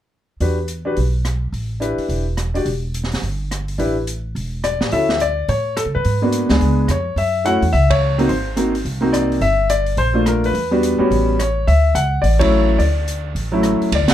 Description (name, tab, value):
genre	jazz piano trio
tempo	213 BPM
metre	4/4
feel	swing 61% on 8ths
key	D major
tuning	A4 = 440 Hz
part	warm concert grand piano	melody	0.4-14.1 s	F#3 to F#5	-17 LUFS	left 2 dB	none
part	upright bass	bass	0.4-14.1 s	E1 to C#3	-20 LUFS	right 1 dB	none
part	open jazz drum kit	drums	0.4-14.1 s	hi-hat, kick drum, ride cymbal, rim click, snare drum	-26 LUFS	right 2 dB	none
room	light reverb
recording	dark, warm production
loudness	-16 LUFS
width	side -11 dB against mid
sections	0.4-4.9 A section; 4.9-13.9 B section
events	band accent 7.9, 12.4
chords	0.4 Em7; 1.5 A9sus4; 2.7 Em; 3.8 Asus4; 4.9 Dmaj7sus2; 6.0 G#m7b5; 6.6 C#7b9; 7.2 F#7(no3); 8.3 G#9; 9.4 Gm7; 10.5 Em7; 11.1 A13; 11.7 Dmaj9